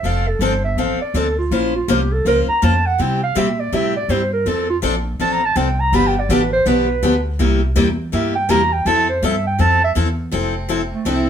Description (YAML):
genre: acoustic string swing (jazz manouche)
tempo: 163 BPM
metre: 4/4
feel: swing 60% on 8ths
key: F major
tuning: A4 = 440 Hz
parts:
  - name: breathy clarinet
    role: melody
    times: 0.0-11.3 s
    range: A3 to B5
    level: -19 LUFS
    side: right 3 dB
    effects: none
  - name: picked steel-string acoustic guitar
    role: accompaniment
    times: 0.0-11.3 s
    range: C3 to C5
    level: -19 LUFS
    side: left 3 dB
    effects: none
  - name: upright bass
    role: bass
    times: 0.0-11.3 s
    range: F1 to C3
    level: -21 LUFS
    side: equal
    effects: none
  - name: picked steel-string acoustic guitar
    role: second line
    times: 10.3-11.3 s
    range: C4 to E4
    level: -27 LUFS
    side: right 4 dB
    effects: none
room: moderate studio reverb, RT60 0.6 s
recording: band playing live in one room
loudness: -15 LUFS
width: side -8 dB against mid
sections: 0.0-10.3 A section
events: clarinet solo 0.0-10.3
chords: 0.0 Dm7/F; 1.5 Bbmadd9; 3.0 C; 4.5 F6; 5.9 G7; 7.4 C7; 8.9 Fmaj7